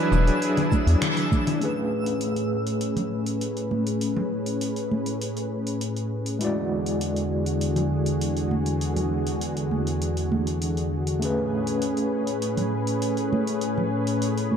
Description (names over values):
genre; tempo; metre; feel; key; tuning
sunset chillout; 100 BPM; 4/4; straight; A major; A4 = 440 Hz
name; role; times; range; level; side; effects
warm flugelhorn; melody; 0.0-1.0 s; B4; -31 LUFS; right 2 dB; tape echo
overdriven tine electric piano; accompaniment; 0.0-14.6 s; F#3 to D5; -29 LUFS; equal; medium tremolo, auto-pan, tape echo
lush unison pad; sustained chords; 0.0-14.6 s; E2 to B4; -26 LUFS; equal; chorus
twinkling granular texture; texture; 0.0-1.6 s; E6; -38 LUFS; right 1 dB; built-in reverb
round analog bass; bass; 0.1-1.0 s; E1 to E2; -18 LUFS; equal; none
smooth R&B drum kit; drums; 0.1-14.5 s; congas, finger snaps, hi-hat, shaker; -32 LUFS; left 2 dB; none
electronic kick drum; drums; 0.7-1.4 s; none; -24 LUFS; equal; none
congas; percussion; 0.7-14.6 s; none; -30 LUFS; right 2 dB; none
room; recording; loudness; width
wet lush hall reverb, RT60 1.9 s; dark, warm production; -23 LUFS; side -7 dB against mid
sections
0.0-1.6 A section; 1.6-14.6 B section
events
band accent 1.0-1.3; filter sweep on analog synth pad 1.6-14.6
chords
0.0 E9; 1.6 Amaj9; 6.4 E9; 11.2 Amaj9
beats
0.42 1.02 | 1.62 2.22 2.82 3.42 | 4.02 4.62 5.22 5.82 | 6.42 7.02 7.62 8.22 | 8.82 9.42 10.02 10.62 | 11.22 11.82 12.42 13.02 | 13.62 14.22